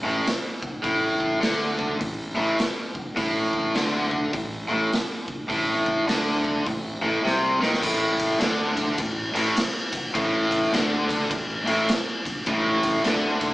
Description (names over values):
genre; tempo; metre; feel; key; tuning
blues rock power trio and southern rock; 103 BPM; 4/4; swing 62% on 8ths; unclear; A4 = 440 Hz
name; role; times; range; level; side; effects
cranked stack guitar; riff; 0.0-13.5 s; A2 to D#3; -23 LUFS; equal; overdrive
fuzz fingered electric bass; bass; 0.1-13.5 s; A1 to D#2; -30 LUFS; equal; overdrive
raw garage drum kit; drums; 0.3-13.5 s; crash cymbal, hi-hat, kick drum, ride cymbal, snare drum; -27 LUFS; equal; none
room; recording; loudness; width
moderate studio reverb, RT60 1.0 s; band playing live in one room, small speaker sound; -22 LUFS; side -18 dB against mid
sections
0.0-7.8 A section; 7.8-13.5 A section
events
drum fill 7.2-7.8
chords
0.0 Asus4